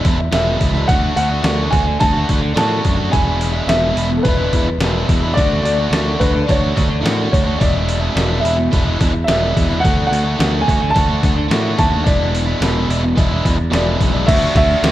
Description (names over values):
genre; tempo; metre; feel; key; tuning
indie rock; 107 BPM; 4/4; straight; D lydian; A4 = 440 Hz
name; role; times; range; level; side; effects
warm upright piano; melody; 0.0-14.9 s; A4 to A5; -20 LUFS; equal; slapback echo
biting overdriven guitar; riff; 0.0-14.9 s; E2 to F#4; -20 LUFS; equal; none
trip hop sampler-style drum kit; drums; 0.0-14.9 s; crash cymbal, hi-hat, kick drum, ride cymbal, snare drum; -18 LUFS; equal; overdrive
modern bright picked electric bass; bass; 0.1-14.9 s; E1 to A2; -19 LUFS; equal; none
room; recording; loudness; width
light reverb; dark, warm production; -13 LUFS; side -14 dB against mid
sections
0.0-14.3 A section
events
none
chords
0.0 E7; 0.9 D; 3.1 E7; 5.4 Dmaj7; 7.6 E7; 9.8 D; 12.1 E7; 14.3 Dadd9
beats
0.32 | 0.88 1.44 2.00 2.56 | 3.12 3.69 4.25 4.80 | 5.37 5.92 6.48 7.04 | 7.60 8.16 8.72 9.28 | 9.84 10.39 10.95 11.51 | 12.07 12.62 13.18 13.73 | 14.29 14.84